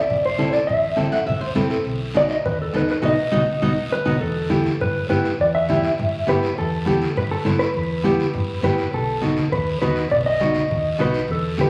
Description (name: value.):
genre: latin, cumbia.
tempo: 204 BPM.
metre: 4/4.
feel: straight.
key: E harmonic minor.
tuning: A4 = 440 Hz.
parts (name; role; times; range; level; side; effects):
mellow electric guitar; melody; 0.0-11.7 s; A4 to E5; -24 LUFS; equal; spring reverb.
hollow-body short-scale fingered electric bass; bass; 0.1-11.7 s; A1 to G2; -30 LUFS; equal; none.
congas; percussion; 0.1-11.7 s; none; -30 LUFS; equal; none.
guiro; percussion; 0.1-11.7 s; none; -38 LUFS; equal; none.
nylon-string guitar; accompaniment; 0.4-11.7 s; B3 to F#5; -25 LUFS; equal; none.
room: wet large studio reverb, RT60 1.3 s.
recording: vinyl crackle.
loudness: -21 LUFS.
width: mono.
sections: 0.0-4.2 A section; 4.2-11.7 B section.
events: nylon-string guitar fill 1.0-1.9; band accent 3.0-4.2.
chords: 0.0 Am; 1.9 B; 4.2 Em; 8.9 B7.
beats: 0.09 0.39 | 0.68 0.98 1.27 1.56 | 1.86 2.15 2.45 2.74 | 3.04 3.33 3.63 3.92 | 4.22 4.51 4.81 5.10 | 5.40 5.69 5.99 6.28 | 6.58 6.87 7.17 7.46 | 7.75 8.05 8.34 8.64 | 8.93 9.23 9.52 9.82 | 10.11 10.40 10.70 10.99 | 11.29 11.58.